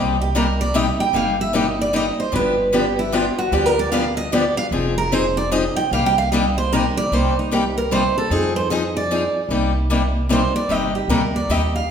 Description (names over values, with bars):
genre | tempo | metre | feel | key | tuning
acoustic string swing (jazz manouche) | 151 BPM | 3/4 | swing 62% on 8ths | C minor | A4 = 441 Hz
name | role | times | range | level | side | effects
picked steel-string acoustic guitar | melody | 0.0-11.9 s | Eb4 to G5 | -21 LUFS | right 2 dB | none
picked steel-string acoustic guitar | accompaniment | 0.0-11.6 s | C3 to Ab4 | -20 LUFS | left 2 dB | none
upright bass | bass | 0.0-11.8 s | F1 to F2 | -25 LUFS | right 1 dB | none
room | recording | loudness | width
wet recital hall reverb, RT60 1.7 s | recorded in a church or concert hall | -17 LUFS | side -7 dB against mid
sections
0.0-7.1 A section; 7.1-11.9 A section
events
steel-string acoustic guitar solo 0.0-11.9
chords
0.0 Cm7; 2.3 G7; 4.7 Fm7; 5.9 Cm7; 8.3 Fm7; 9.5 Cm7